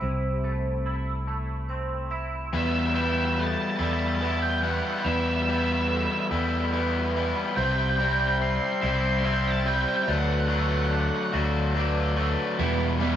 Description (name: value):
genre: post-rock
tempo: 48 BPM (dotted quarters)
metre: 6/8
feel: straight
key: E minor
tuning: A4 = 440 Hz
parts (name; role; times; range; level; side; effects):
- twangy electric guitar; arpeggios; 0.0-13.2 s; E2 to F#4; -34 LUFS; right 2 dB; ensemble chorus, tape echo
- vibraphone with medium mallets; arpeggios; 0.0-13.2 s; A4 to E5; -35 LUFS; right 4 dB; tape echo
- fingered electric bass; bass; 0.0-13.2 s; C2 to E2; -27 LUFS; equal; none
- overdriven semi-hollow guitar; riff; 2.5-13.2 s; C3 to E4; -27 LUFS; left 4 dB; none
- octave-fuzz lead guitar; melody; 2.6-11.3 s; E5 to C6; -29 LUFS; right 4 dB; distortion, tape echo
- crunchy overdriven guitar; riff; 12.6-13.2 s; E2 to E3; -28 LUFS; right 11 dB; none
room: light reverb, digital ambience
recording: small room ambience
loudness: -23 LUFS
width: side -10 dB against mid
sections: 0.0-2.5 A section; 2.5-13.2 B section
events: build-up 2.5-13.2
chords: 0.0 Am/C; 2.5 Em; 7.6 C; 10.1 D; 12.6 Em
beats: | 0.02 1.28 | 2.54 3.79 | 5.05 6.31 | 7.57 8.83 | 10.08 11.34 | 12.60